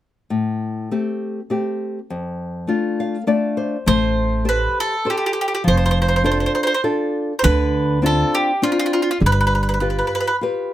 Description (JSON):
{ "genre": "italian folk, Italian serenade", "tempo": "101 BPM", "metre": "3/4", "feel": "straight", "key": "A minor", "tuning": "A4 = 440 Hz", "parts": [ { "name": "nylon-string guitar", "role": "accompaniment", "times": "0.3-10.7 s", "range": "F2 to F5", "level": "-21 LUFS", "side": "left 2 dB", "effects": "none" }, { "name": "bowl-back mandolin", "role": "melody", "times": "3.9-10.4 s", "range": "F4 to C5", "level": "-20 LUFS", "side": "right 1 dB", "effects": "plate reverb" }, { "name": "upright bass", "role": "bass", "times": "3.9-10.0 s", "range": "F1 to D2", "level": "-19 LUFS", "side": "right 1 dB", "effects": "none" } ], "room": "light reverb", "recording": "none", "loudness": "-17 LUFS", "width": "side -13 dB against mid", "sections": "0.3-3.9 A section; 3.9-10.7 B section", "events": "nylon-string guitar fill 2.7-3.9", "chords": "0.3 Am7; 2.1 F6; 3.9 Am7; 5.7 F6; 7.5 Dm7; 9.2 G7" }